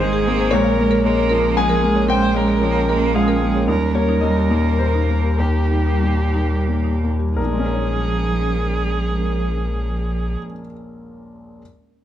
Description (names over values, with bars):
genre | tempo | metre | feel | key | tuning
neoclassical piano and strings | 85-116 BPM | 3/4 | rubato | Bb dorian | A4 = 440 Hz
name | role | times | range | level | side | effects
rich cello | second line | 0.0-10.4 s | F3 to Bb3 | -24 LUFS | right 5 dB | none
clear concert grand piano | accompaniment | 0.0-11.6 s | Bb1 to Ab5 | -22 LUFS | left 3 dB | none
warm viola | accompaniment | 0.0-10.4 s | G4 to C5 | -25 LUFS | right 2 dB | none
ethereal airy pad | sustained chords | 0.0-10.4 s | G3 to Bb4 | -28 LUFS | right 2 dB | ensemble chorus, built-in reverb
punchy sub bass | bass | 0.0-10.4 s | Ab1 to Eb2 | -21 LUFS | equal | none
buzzing marimba with medium hard mallets | arpeggios | 0.1-7.3 s | Eb4 to F5 | -26 LUFS | left 1 dB | slapback echo
room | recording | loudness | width
light reverb | none | -16 LUFS | side -11 dB against mid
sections
0.0-7.4 A section; 7.4-11.6 B section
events
slowing down 2.9-7.4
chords
0.0 Abadd9; 0.5 Bbm7; 3.7 Eb; 7.4 Bbm7